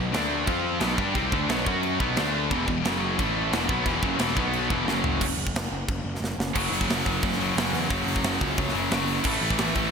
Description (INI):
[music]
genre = heavy metal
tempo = 178 BPM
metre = 4/4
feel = straight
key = F# minor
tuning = A4 = 439 Hz
[part]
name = heavy high-gain guitar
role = riff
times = 0.0-9.9 s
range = E2 to G4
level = -28 LUFS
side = left 10 dB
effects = distortion
[part]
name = overdriven electric guitar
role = riff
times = 0.0-5.2 s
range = E2 to G4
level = -31 LUFS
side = equal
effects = none
[part]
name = scooped high-gain guitar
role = riff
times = 0.0-9.9 s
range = E2 to G4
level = -29 LUFS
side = right 11 dB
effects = distortion
[part]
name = fuzz picked electric bass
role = bass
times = 0.0-9.9 s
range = E1 to G2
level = -31 LUFS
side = equal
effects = overdrive
[part]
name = tight metal drum kit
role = drums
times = 0.1-9.8 s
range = crash cymbal, hi-hat, kick drum, snare drum, toms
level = -28 LUFS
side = right 1 dB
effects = none
[sound]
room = moderate lush hall reverb, RT60 1.8 s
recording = bright 1980s-style digital production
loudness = -23 LUFS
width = side -6 dB against mid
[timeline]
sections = 0.0-5.2 A section; 5.2-6.6 B section; 6.6-9.9 C section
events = drum fill 4.9-5.2, 6.2-6.6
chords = 0.1 D5; 0.5 F5; 0.8 B5; 1.7 F#5; 2.0 B5; 2.2 D5; 2.5 E5; 2.8 F#5; 3.2 A5; 3.5 E5; 4.4 B5; 4.7 E5; 4.9 F#5; 5.2 N.C.; 6.6 F#5; 9.3 A5